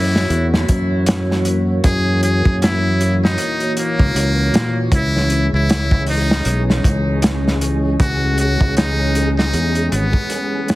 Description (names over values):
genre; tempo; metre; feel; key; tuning
trip hop; 78 BPM; 4/4; swing 58% on 16ths; C# dorian; A4 = 440 Hz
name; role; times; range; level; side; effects
trumpet with metal mute; melody; 0.0-10.8 s; A#3 to G#4; -22 LUFS; equal; vintage 12-bit sampler grit, tape echo
dark analog pad; sustained chords; 0.0-10.8 s; E3 to C#5; -23 LUFS; left 1 dB; chorus
overdriven fingered electric bass; bass; 0.0-10.1 s; G#1 to A#2; -18 LUFS; equal; none
crunchy breakbeat drum kit; drums; 0.2-10.8 s; hi-hat, kick drum, snare drum; -18 LUFS; equal; none
flickering grainy texture; texture; 5.5-10.8 s; G#3 to G#4; -30 LUFS; left 1 dB; built-in reverb
room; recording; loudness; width
small room reverb; heavily compressed radio sound, multiband compression; -14 LUFS; side -18 dB against mid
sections
0.0-10.8 A section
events
fade-out 9.0-10.8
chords
0.0 F#7; 4.9 C#m